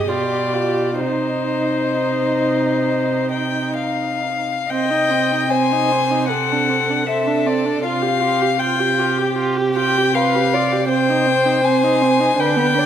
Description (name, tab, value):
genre	classical, slow romantic movement for string quartet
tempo	62-81 BPM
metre	4/4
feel	rubato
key	C minor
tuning	A4 = 440 Hz
part	warm violin	melody	0.0-12.9 s	C5 to Ab5	-20 LUFS	left 5 dB	none
part	dark violin	second line	0.0-12.9 s	Eb4 to Eb5	-22 LUFS	left 1 dB	none
part	warm viola	accompaniment	0.0-12.9 s	B3 to Ab4	-23 LUFS	right 3 dB	none
part	rich cello	bass	0.0-12.9 s	B2 to D3	-23 LUFS	right 5 dB	none
room	wet recital hall reverb, RT60 1.4 s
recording	none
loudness	-16 LUFS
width	side -9 dB against mid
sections	0.0-4.7 A section; 4.7-12.9 B section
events	none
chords	0.0 G7; 1.0 Cm; 6.3 D7/C; 7.8 Csus4; 10.9 Cm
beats	0.09 | 1.01 1.95 2.87 3.81 | 4.71 5.51 6.30 7.08 | 7.84 8.61 9.39 10.15 | 10.90 11.66 12.40